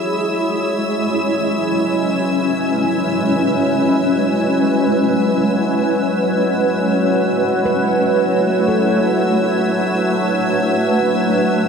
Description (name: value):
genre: ambient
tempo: free time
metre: none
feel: none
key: unclear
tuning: A4 = 440 Hz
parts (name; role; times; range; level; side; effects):
- granular cloud pad; sustained chords; 0.0-11.7 s; G#3 to C#5; -16 LUFS; equal; built-in reverb
- analog drone; drone; 0.0-11.7 s; F#3 to F#4; -22 LUFS; right 1 dB; chorus
- clear studio violin section; texture; 0.0-11.7 s; E5 to E6; -26 LUFS; left 2 dB; none
- handpan; arpeggios; 7.7-11.1 s; A4 to B4; -24 LUFS; right 2 dB; ping-pong delay
room: wet lush hall reverb, RT60 3.0 s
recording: none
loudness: -14 LUFS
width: side -6 dB against mid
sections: 0.0-11.7 A section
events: none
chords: 0.0 C#m7; 7.7 Bm9